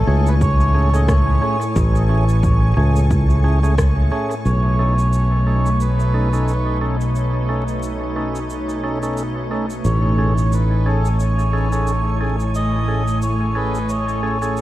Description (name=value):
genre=ambient dub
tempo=89 BPM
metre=4/4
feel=swing 57% on 16ths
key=B mixolydian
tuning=A4 = 440 Hz
part: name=melodica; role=melody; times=0.0-14.6 s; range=A4 to D#5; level=-26 LUFS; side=right 1 dB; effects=dub echo
part: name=soft additive organ-like pad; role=sustained chords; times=0.0-14.6 s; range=A2 to G#5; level=-24 LUFS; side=equal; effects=ensemble chorus, built-in reverb
part: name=fingered electric bass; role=bass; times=0.0-14.6 s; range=A1 to C#2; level=-18 LUFS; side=equal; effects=none
part: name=percussive tonewheel organ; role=stabs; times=0.1-14.6 s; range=A3 to A4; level=-26 LUFS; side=right 1 dB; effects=overdrive, dub echo
part: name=electronic cabasa and rim click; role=drums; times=0.3-14.6 s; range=none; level=-33 LUFS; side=equal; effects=overdrive, studio reverb, dub echo
part: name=electronic kick drum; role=drums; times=0.4-3.9 s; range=none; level=-20 LUFS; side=equal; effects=overdrive, studio reverb
room=light reverb, digital ambience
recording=dark, warm production, vinyl crackle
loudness=-16 LUFS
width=side -15 dB against mid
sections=0.0-4.5 A section; 4.5-14.6 B section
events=none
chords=0.0 Amaj7; 4.5 B9; 9.8 Amaj7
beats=0.41 1.09 | 1.76 2.43 3.11 3.78 | 4.46 5.13 5.80 6.48 | 7.15 7.83 8.50 9.18 | 9.85 10.52 11.20 11.87 | 12.55 13.22 13.89 14.57